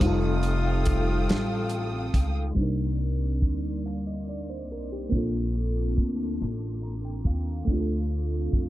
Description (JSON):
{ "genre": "slow six-eight R&B", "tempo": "47 BPM (dotted quarters)", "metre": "6/8", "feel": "straight", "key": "unclear", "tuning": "A4 = 442 Hz", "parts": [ { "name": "FM electric piano with soft pad layer", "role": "accompaniment", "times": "0.0-8.7 s", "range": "G3 to Bb5", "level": "-30 LUFS", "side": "equal", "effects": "chorus" }, { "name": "dark studio string section", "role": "sustained chords", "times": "0.0-8.7 s", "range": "Bb3 to Eb6", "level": "-39 LUFS", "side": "left 1 dB", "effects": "none" }, { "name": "warm horn section", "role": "stabs", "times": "0.0-2.1 s", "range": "C3 to F4", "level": "-34 LUFS", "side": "left 4 dB", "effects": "none" }, { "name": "upright bass", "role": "bass", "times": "0.0-8.7 s", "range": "F1 to F2", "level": "-28 LUFS", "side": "equal", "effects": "none" }, { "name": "warm soul drum kit", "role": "drums", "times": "0.0-8.7 s", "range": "finger snaps, hi-hat, kick drum, snare drum", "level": "-25 LUFS", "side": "equal", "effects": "none" } ], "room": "small room ambience", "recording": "dark, warm production, low-pass filter", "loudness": "-25 LUFS", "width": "side -15 dB against mid", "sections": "0.0-2.6 A section; 2.6-8.7 B section", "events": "filter sweep 2.6-8.7; FM electric piano fill 6.4-7.7", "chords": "0.0 F9; 2.6 Cm9; 5.1 Bbmaj9; 7.7 Dm7" }